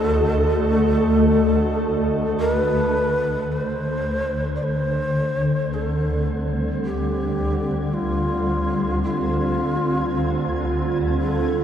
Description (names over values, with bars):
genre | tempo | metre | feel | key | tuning
dark ambient drone | 54 BPM | 4/4 | straight | unclear | A4 = 441 Hz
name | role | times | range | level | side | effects
breathy mellow long shakuhachi | melody | 0.0-11.6 s | F4 to D5 | -24 LUFS | equal | shimmer reverb, diffuse ambient delay
granular cloud pad | sustained chords | 0.0-11.6 s | D3 to Eb5 | -24 LUFS | equal | built-in reverb, shimmer reverb
dark detuned synth bell | arpeggios | 0.0-3.5 s | none | barely audible | none | none
swarming drone | drone | 0.0-11.6 s | D2 to D3 | -24 LUFS | equal | built-in reverb
flickering grainy texture | texture | 0.0-11.6 s | A4 to G#6 | -34 LUFS | right 1 dB | built-in reverb, shimmer reverb
room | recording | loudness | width
wet huge ambient reverb, RT60 8.0 s | dark, warm production | -19 LUFS | side -9 dB against mid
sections
0.0-3.5 A section; 3.5-11.6 B section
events
fade-in on synth texture 3.5-11.6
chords
0.0 F#m; 3.5 Dm7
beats
0.14 1.26 2.38 | 3.50 4.62 5.73 6.83 | 7.93 9.03 10.12 11.21